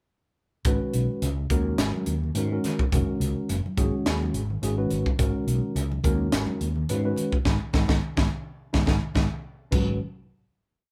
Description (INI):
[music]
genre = electric jazz fusion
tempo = 106 BPM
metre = 4/4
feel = swing 54% on 16ths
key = G# minor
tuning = A4 = 440 Hz
[part]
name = crisp fusion drum kit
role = drums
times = 0.6-9.9 s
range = crash cymbal, hi-hat, kick drum, snare drum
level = -28 LUFS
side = equal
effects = none
[part]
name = mellow tine electric piano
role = accompaniment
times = 0.7-10.0 s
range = D#3 to B4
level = -31 LUFS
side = equal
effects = none
[part]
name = mellow fretless electric bass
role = bass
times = 0.7-10.0 s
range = F#1 to G#2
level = -30 LUFS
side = equal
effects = none
[part]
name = congas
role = percussion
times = 1.5-10.0 s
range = none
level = -36 LUFS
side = equal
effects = none
[sound]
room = moderate studio reverb, RT60 0.5 s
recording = band playing live in one room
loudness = -26 LUFS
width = mono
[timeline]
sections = 0.7-9.7 groove; 9.7-10.9 final chord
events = band accent 7.5-9.7; drum fill 8.6-9.7; tine electric piano fill 8.9-9.7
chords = 0.7 G#m11; 9.7 G#m7